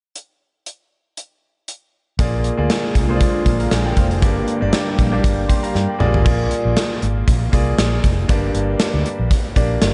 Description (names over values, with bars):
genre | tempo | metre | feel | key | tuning
1980s-style pop | 118 BPM | 4/4 | swing 55% on 16ths | Bb mixolydian | A4 = 440 Hz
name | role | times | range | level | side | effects
gated 80s drum kit | drums | 0.2-9.9 s | crash cymbal, hi-hat, kick drum, snare drum, toms | -20 LUFS | equal | none
clear concert grand piano | accompaniment | 2.2-9.9 s | G2 to C6 | -24 LUFS | equal | shimmer reverb
phased analog pad | sustained chords | 2.8-6.3 s | D3 to G4 | -28 LUFS | equal | phaser, chorus, shimmer reverb
vintage muted fingered electric bass | bass | 2.2-9.9 s | F1 to G2 | -23 LUFS | equal | none
room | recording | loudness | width
light reverb, small room ambience | dark, warm production, nothing above 10.5 kHz | -18 LUFS | mono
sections
0.2-2.2 A section; 2.2-6.3 B section; 6.3-9.9 C section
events
drum fill 5.8-6.3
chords
0.2 N.C.; 2.2 Bb7; 4.2 Gm; 6.0 Bb7; 8.3 Gm